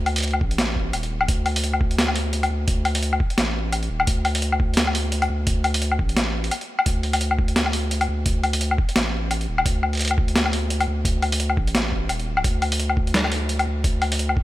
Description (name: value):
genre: half-time drum and bass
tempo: 172 BPM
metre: 4/4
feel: swing 57% on 16ths, half-time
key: unclear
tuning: A4 = 440 Hz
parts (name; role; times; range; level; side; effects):
- saturated sub bass; bass; 0.0-14.4 s; Eb1 to D2; -24 LUFS; equal; none
- boom bap sampler-style drum kit; drums; 0.1-14.4 s; hi-hat, snare drum, woodblock; -22 LUFS; left 1 dB; none
- electronic kick drum; drums; 0.4-14.4 s; none; -22 LUFS; equal; none
room: little or no reverb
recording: none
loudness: -20 LUFS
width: side -16 dB against mid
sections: 0.0-14.4 A section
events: none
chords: none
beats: 0.24 0.59 0.94 | 1.28 1.63 1.98 2.33 | 2.68 3.03 3.38 3.73 | 4.08 4.42 4.77 5.12 | 5.47 5.82 6.17 6.52 | 6.87 7.21 7.56 7.91 | 8.26 8.61 8.96 9.31 | 9.66 10.01 10.35 10.70 | 11.05 11.40 11.75 12.10 | 12.45 12.79 13.14 13.49 | 13.84 14.19